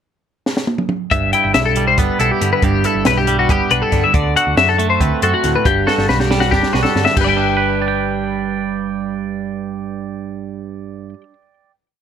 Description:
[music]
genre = math rock and midwest emo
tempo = 277 BPM (eighths)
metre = 7/8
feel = straight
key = G major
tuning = A4 = 439 Hz
[part]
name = compact cocktail drum kit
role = drums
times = 0.5-7.3 s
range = crash cymbal, hi-hat, kick drum, snare drum, toms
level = -20 LUFS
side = equal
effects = none
[part]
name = twangy electric guitar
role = accompaniment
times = 1.1-11.7 s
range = G2 to G5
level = -20 LUFS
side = right 10 dB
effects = none
[part]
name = twelve-string electric guitar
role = arpeggios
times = 1.1-11.2 s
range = F#4 to G5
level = -16 LUFS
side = left 7 dB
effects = analog chorus, analog delay
[part]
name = hollow-body short-scale picked electric bass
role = bass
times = 1.1-11.1 s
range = G1 to G2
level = -21 LUFS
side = equal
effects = none
[sound]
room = little or no reverb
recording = none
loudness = -14 LUFS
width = side -8 dB against mid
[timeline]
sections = 0.0-1.1 pickup bar; 1.1-7.2 A section; 7.2-10.2 final chord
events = drum fill 0.5-1.1, 5.9-7.2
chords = 0.0 N.C.; 1.1 G69; 4.1 D13; 5.7 Gmaj9; 7.2 G

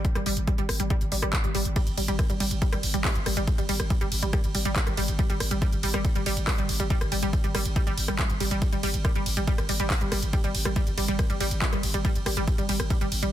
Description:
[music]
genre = driving peak-time techno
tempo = 140 BPM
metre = 4/4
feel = straight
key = unclear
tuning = A4 = 442 Hz
[part]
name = growling 808-style bass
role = bass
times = 0.0-13.3 s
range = G1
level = -30 LUFS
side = equal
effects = tube saturation, sidechain pumping, low-pass filter
[part]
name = electronic kick drum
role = drums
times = 0.0-13.0 s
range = none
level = -26 LUFS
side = equal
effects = none
[part]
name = techno drum kit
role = drums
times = 0.0-13.3 s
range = handclaps, hi-hat, ride cymbal, rim click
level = -31 LUFS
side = equal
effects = overdrive, sidechain pumping on hats, sidechain pumping on cymbals
[part]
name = wide unison pluck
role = riff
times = 0.2-13.3 s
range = G3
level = -30 LUFS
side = right 1 dB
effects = overdrive, sidechain pumping, dub echo
[sound]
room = little or no reverb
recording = dense, heavily limited modern master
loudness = -23 LUFS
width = side -12 dB against mid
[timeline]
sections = 0.0-13.3 A section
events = none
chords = none

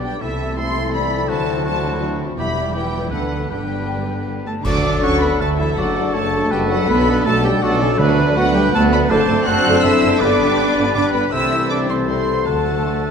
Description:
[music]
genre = classical, dramatic, fast romantic movement for symphony orchestra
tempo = 162 BPM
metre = 3/4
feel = straight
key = G major, D major from 4.7 s, G major from 9.1 s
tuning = A4 = 438 Hz
[part]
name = warm symphonic violin section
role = melody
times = 0.0-13.1 s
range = C#5 to F#6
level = -25 LUFS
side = left 1 dB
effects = none
[part]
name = clear oboe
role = second line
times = 0.0-13.1 s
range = F#4 to F#5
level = -28 LUFS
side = right 1 dB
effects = none
[part]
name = mellow clarinet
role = second line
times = 0.0-13.1 s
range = C#4 to F#5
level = -27 LUFS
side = left 2 dB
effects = none
[part]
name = mellow hollow concert flute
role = second line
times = 0.0-13.1 s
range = A4 to F#6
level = -27 LUFS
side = left 1 dB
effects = none
[part]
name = warm symphonic violin section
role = second line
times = 0.0-13.1 s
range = A3 to B4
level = -27 LUFS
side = left 1 dB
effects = none
[part]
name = rich studio viola section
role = accompaniment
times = 0.0-13.1 s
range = D3 to D4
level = -25 LUFS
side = right 1 dB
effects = none
[part]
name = mellow French horn section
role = sustained chords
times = 0.0-13.1 s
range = E3 to G4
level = -26 LUFS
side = left 4 dB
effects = none
[part]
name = concert harp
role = arpeggios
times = 0.0-13.1 s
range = F#2 to C5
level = -26 LUFS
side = left 10 dB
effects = none
[part]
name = warm symphonic cello section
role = bass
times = 0.0-13.1 s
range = E2 to F#4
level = -24 LUFS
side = right 2 dB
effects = none
[part]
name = warm symphonic double bass section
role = bass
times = 0.0-13.1 s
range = E1 to D2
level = -24 LUFS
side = right 3 dB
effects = none
[part]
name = cymbal swell, clash cymbals and concert bass drum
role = percussion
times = 2.4-5.4 s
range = none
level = -28 LUFS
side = equal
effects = none
[part]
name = clear trumpet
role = stabs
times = 4.7-13.1 s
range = A4 to C5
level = -24 LUFS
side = right 2 dB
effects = none
[part]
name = warm tuba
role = bass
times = 4.7-13.1 s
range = F#1 to D2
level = -24 LUFS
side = right 3 dB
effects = none
[part]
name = timpani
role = percussion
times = 8.0-8.5 s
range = D3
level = -24 LUFS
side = right 2 dB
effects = none
[sound]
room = wet scoring stage reverb, RT60 1.7 s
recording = none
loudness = -15 LUFS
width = side -6 dB against mid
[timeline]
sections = 0.0-4.7 A section; 4.7-13.1 B section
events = band accent 4.7-5.0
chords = 0.2 Am/C; 1.3 D9; 2.4 Em; 3.1 D69; 3.5 G; 4.7 D; 5.8 D/F#; 6.9 Bm7; 8.0 Bm/D; 9.1 D7/F#; 10.2 G; 11.3 Am/C; 12.5 D

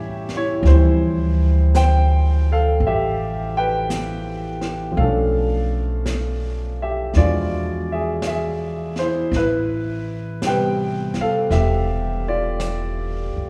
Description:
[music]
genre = jazz ballad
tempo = 55 BPM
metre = 4/4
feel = swing 68% on 8ths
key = unclear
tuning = A4 = 439 Hz
[part]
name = warm grand piano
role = accompaniment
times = 0.0-13.5 s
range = B2 to G5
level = -24 LUFS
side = equal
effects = none
[part]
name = upright bass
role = bass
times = 0.0-13.4 s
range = E1 to A2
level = -23 LUFS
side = equal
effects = none
[part]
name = jazz brush drum kit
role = drums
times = 0.3-13.5 s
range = brushed snare drum, hi-hat, snare drum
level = -35 LUFS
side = equal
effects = none
[sound]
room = moderate concert hall reverb, RT60 2.1 s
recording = recorded in a church or concert hall, small room ambience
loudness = -20 LUFS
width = mono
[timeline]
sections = 0.0-13.5 A section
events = none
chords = 0.0 A7b9; 0.6 Dm11; 5.0 Bm7b5; 7.2 E7b9; 9.3 Am9

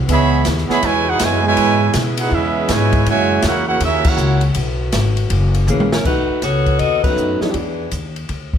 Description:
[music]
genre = jazz, big band swing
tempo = 161 BPM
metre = 4/4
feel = swing 64% on 8ths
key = unclear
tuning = A4 = 440 Hz
[part]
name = mellow saxophone section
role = sustained chords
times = 0.0-6.0 s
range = C#3 to F#4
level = -26 LUFS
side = left 1 dB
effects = none
[part]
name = upright bass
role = bass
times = 0.0-8.6 s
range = F#1 to B2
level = -19 LUFS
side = left 1 dB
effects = none
[part]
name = clear trumpet section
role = melody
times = 0.1-4.4 s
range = C#4 to B5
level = -18 LUFS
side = right 3 dB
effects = none
[part]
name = warm trombone section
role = second line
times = 0.1-4.4 s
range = B2 to F#4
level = -20 LUFS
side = right 6 dB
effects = none
[part]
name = open jazz drum kit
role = drums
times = 0.1-8.6 s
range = crash cymbal, hi-hat, kick drum, ride cymbal, snare drum, toms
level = -22 LUFS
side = equal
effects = none
[part]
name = mellow saxophone section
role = melody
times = 5.7-7.9 s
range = E3 to D#5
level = -18 LUFS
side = left 3 dB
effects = none
[part]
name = warm upright piano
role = accompaniment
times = 7.0-7.5 s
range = F#3 to E4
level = -22 LUFS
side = right 2 dB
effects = none
[sound]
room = moderate large studio reverb, RT60 1.4 s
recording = none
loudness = -14 LUFS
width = side -8 dB against mid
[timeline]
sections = 0.0-6.0 A section; 6.0-8.6 B section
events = band accent 4.0, 7.0; drum fill 5.7-6.0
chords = 0.1 C#m7; 3.1 F#7; 4.6 B7; 5.3 F#7; 6.0 B7; 7.5 E7

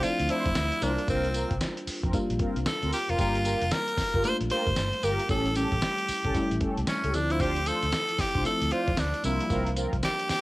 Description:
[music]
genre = R&B, new jack swing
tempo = 114 BPM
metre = 4/4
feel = swing 62% on 16ths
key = unclear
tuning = A4 = 439 Hz
[part]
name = raspy tenor saxophone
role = melody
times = 0.0-10.4 s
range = C4 to C5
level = -29 LUFS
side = equal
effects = cassette tape
[part]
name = FM electric piano with soft pad layer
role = accompaniment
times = 0.0-10.4 s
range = F3 to F4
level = -33 LUFS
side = left 1 dB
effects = chorus, tremolo, cassette tape
[part]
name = mellow synth brass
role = stabs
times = 0.0-10.0 s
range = C4 to C5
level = -33 LUFS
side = equal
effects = chorus, phaser, cassette tape
[part]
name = vintage muted fingered electric bass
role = bass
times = 0.0-10.3 s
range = F1 to F2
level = -31 LUFS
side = equal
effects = none
[part]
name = dusty soul sampler-style drum kit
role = drums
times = 0.0-10.4 s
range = hi-hat, kick drum, snare drum, tambourine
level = -32 LUFS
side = equal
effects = cassette tape
[sound]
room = little or no reverb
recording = home recording on cassette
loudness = -25 LUFS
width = side -19 dB against mid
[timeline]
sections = 0.0-10.4 A section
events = none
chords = 0.0 Dm7; 0.8 C7sus4; 3.2 Gm7; 5.3 A7; 7.1 Dm7; 9.2 C7sus4

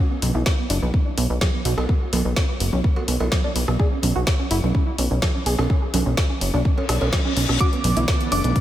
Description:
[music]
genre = progressive house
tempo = 126 BPM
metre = 4/4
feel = straight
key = B dorian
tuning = A4 = 438 Hz
[part]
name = tight sequenced synth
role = arpeggios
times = 0.0-8.6 s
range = B3 to A4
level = -27 LUFS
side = right 2 dB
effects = chorus, sidechain pumping, analog delay
[part]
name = plucky analog bass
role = bass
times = 0.2-8.5 s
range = F#1 to B1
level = -22 LUFS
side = equal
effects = sidechain pumping
[part]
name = deep house drum kit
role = drums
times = 0.2-8.6 s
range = hi-hat, rim click, snare drum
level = -27 LUFS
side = left 1 dB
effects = studio reverb
[part]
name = congas and cowbell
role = percussion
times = 0.2-8.5 s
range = none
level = -30 LUFS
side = right 2 dB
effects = sidechain pumping on perc
[part]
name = electronic kick drum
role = drums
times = 0.5-8.6 s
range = none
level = -21 LUFS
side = equal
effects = studio reverb
[part]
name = reverse cymbal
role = sound effects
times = 6.8-7.6 s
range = none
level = -30 LUFS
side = left 5 dB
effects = none
[part]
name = glassy synth bell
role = melody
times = 7.6-8.6 s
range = D6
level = -26 LUFS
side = right 2 dB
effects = chorus, tremolo, sidechain pumping, analog delay
[part]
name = airy breathy pad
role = sustained chords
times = 7.8-8.6 s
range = D3 to D4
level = -29 LUFS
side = right 1 dB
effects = chorus, sidechain pumping
[sound]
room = moderate cathedral reverb, RT60 5.4 s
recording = dreamy mix soaked in reverb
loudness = -18 LUFS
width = side -12 dB against mid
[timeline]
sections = 0.0-8.6 A section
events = filter sweep on synth arpeggio sound 0.0-8.6; reverse cymbal 6.8-7.6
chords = 0.0 B5; 3.8 F#sus4; 7.6 Bm11

